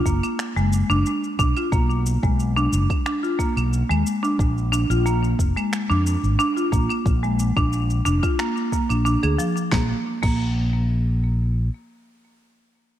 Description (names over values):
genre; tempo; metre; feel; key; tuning
organic downtempo; 90 BPM; 4/4; straight; Bb phrygian dominant; A4 = 440 Hz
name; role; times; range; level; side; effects
marimba with medium hard mallets; arpeggios; 0.0-10.4 s; F3 to Ab4; -23 LUFS; equal; ping-pong delay
fretless electric bass; bass; 0.1-11.7 s; F1 to F2; -21 LUFS; equal; wide subtle chorus, sidechain pumping
deep house drum kit; drums; 0.1-10.4 s; claves, crash cymbal, finger snaps, shaker, snare drum; -31 LUFS; right 1 dB; small room ambience
electronic kick drum; drums; 0.1-10.4 s; none; -23 LUFS; equal; small room ambience
room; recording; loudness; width
light reverb, digital ambience; dark, warm production; -19 LUFS; side -12 dB against mid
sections
0.0-9.7 A section; 9.7-12.4 B section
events
none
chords
0.0 Bmaj7(no3); 4.4 Bb; 9.7 N.C.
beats
0.39 1.05 | 1.72 2.39 3.06 3.72 | 4.39 5.05 5.72 6.39 | 7.05 7.72 8.39 9.05 | 9.72 10.39 11.05